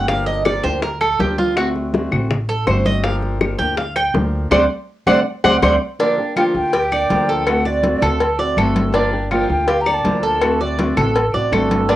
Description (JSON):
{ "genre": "latin, Cuban son and guajira", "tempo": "163 BPM", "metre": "4/4", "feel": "straight", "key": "G minor", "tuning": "A4 = 441 Hz", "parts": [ { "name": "flamenco guitar", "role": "accompaniment", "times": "0.0-12.0 s", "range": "D3 to G4", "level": "-23 LUFS", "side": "left 1 dB", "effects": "cassette tape" }, { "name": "Cuban tres", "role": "arpeggios", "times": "0.0-12.0 s", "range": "D4 to G5", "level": "-19 LUFS", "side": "right 2 dB", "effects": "cassette tape" }, { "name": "upright bass", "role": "bass", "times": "0.0-12.0 s", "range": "G1 to D2", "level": "-23 LUFS", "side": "equal", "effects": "none" }, { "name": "bongos and cowbell", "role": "percussion", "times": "0.1-12.0 s", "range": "none", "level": "-22 LUFS", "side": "left 3 dB", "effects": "none" }, { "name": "congas", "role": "percussion", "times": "0.1-12.0 s", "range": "none", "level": "-25 LUFS", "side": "left 1 dB", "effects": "none" }, { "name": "claves", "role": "percussion", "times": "0.5-11.7 s", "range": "none", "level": "-25 LUFS", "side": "left 4 dB", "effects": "none" }, { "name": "breathy concert flute", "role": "melody", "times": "6.4-10.6 s", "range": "D5 to Bb5", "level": "-20 LUFS", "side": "left 1 dB", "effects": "cassette tape" } ], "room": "moderate studio reverb, RT60 0.5 s", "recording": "home recording on cassette", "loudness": "-15 LUFS", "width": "side -14 dB against mid", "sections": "0.0-6.0 A section; 6.0-12.0 B section", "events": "Cuban tres solo 0.0-6.0; band accent 4.5-6.0; drum fill 4.9-6.0", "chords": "0.1 Gm7; 1.6 D7; 3.0 Gm7; 4.5 D7; 6.0 Gm7; 7.5 D7; 8.9 Gm7; 10.4 D7" }